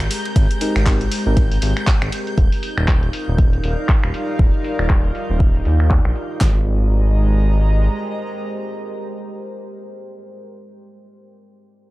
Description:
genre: deep house.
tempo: 119 BPM.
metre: 4/4.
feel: swing 58% on 16ths.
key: Ab lydian.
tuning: A4 = 440 Hz.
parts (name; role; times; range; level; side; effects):
deep dark ambient pad; sustained chords; 0.0-10.2 s; G3 to D5; -30 LUFS; equal; chorus, built-in reverb, sidechain pumping.
smooth gliding synth bass; bass; 0.0-7.9 s; Eb1 to Eb2; -18 LUFS; equal; sidechain pumping.
breakbeat sampler-style drum kit; drums; 0.0-2.3 s; ride cymbal, snare drum; -35 LUFS; right 2 dB; sidechain pumping on cymbals, high-pass filter on cymbals, sidechain pumping on hats, high-pass filter on hats, high-pass filter on snare.
deep house drum kit; drums; 0.0-6.4 s; finger snaps, handclaps, hi-hat; -26 LUFS; equal; low-pass filter on hats, low-pass filter on perc, low-pass filter on snare, low-pass filter on cymbals, low-pass filter on room.
airy breathy pad; texture; 0.0-10.4 s; Ab3 to Bb5; -28 LUFS; equal; chorus, sidechain pumping.
string machine, violins; texture; 0.0-6.4 s; G6; -33 LUFS; equal; ensemble chorus, sidechain pumping.
deep house drum kit; drums; 0.4-6.5 s; handclaps, kick drum, snare drum; -16 LUFS; equal; none.
deep mellow chord stab; stabs; 0.6-1.5 s; Ab3 to Bb4; -26 LUFS; equal; chorus, vintage 12-bit sampler grit, sidechain pumping, tape echo.
room: little or no reverb.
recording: none.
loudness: -15 LUFS.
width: side -18 dB against mid.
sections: 0.0-6.4 A section; 6.4-10.4 B section.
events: filter sweep on drum 0.0-6.4.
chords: 0.0 Abmaj9; 2.4 Ebmaj9; 6.4 Abmaj9.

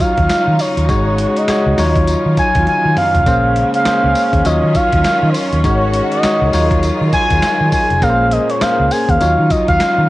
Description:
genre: R&B, new jack swing.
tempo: 101 BPM.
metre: 4/4.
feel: swing 60% on 16ths.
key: unclear.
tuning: A4 = 441 Hz.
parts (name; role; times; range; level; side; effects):
expressive synth lead; melody; 0.0-10.1 s; C5 to Ab5; -16 LUFS; equal; chorus.
bell-like tine electric piano; accompaniment; 0.0-10.1 s; Gb3 to Db5; -18 LUFS; left 2 dB; cassette tape.
clear symphonic string section; sustained chords; 0.0-10.1 s; Bb2 to Gb4; -23 LUFS; right 1 dB; cassette tape.
dusty soul sampler-style drum kit; drums; 0.0-10.0 s; handclaps, hi-hat, kick drum, snare drum, tambourine, toms; -20 LUFS; equal; cassette tape.
vintage muted fingered electric bass; bass; 0.2-10.1 s; F1 to Eb3; -17 LUFS; equal; none.
room: light reverb.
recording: home recording on cassette.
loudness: -11 LUFS.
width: side -17 dB against mid.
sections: 0.0-10.1 A section.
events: drum fill 2.7-3.3.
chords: 0.0 Ebm9; 0.9 Ab7sus4; 1.8 Ebm9; 3.3 Bbm9; 4.5 Ebm9; 5.6 Ab7sus4; 6.5 Ebm9; 8.0 Bbm9; 9.2 Ebm9.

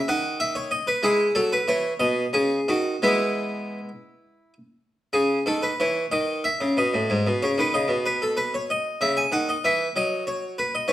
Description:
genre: classical, baroque-style suite movement for harpsichord.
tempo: 56-65 BPM (dotted quarters).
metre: 6/8.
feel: rubato.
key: E major, C# minor from 5.1 s.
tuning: A4 = 440 Hz.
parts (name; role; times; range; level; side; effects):
harpsichord; solo; 0.0-10.9 s; G#2 to G#5; -21 LUFS; equal; none.
room: wet stone room reverb, RT60 1.0 s.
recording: none.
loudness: -21 LUFS.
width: side -14 dB against mid.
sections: 0.0-5.1 A section; 5.1-10.9 A section.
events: none.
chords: 0.1 N.C.; 1.0 E; 2.0 B; 3.0 E; 5.1 C#m; 6.1 B/D#; 7.1 G#madd11 (rootless); 9.0 C#madd9; 10.0 N.C..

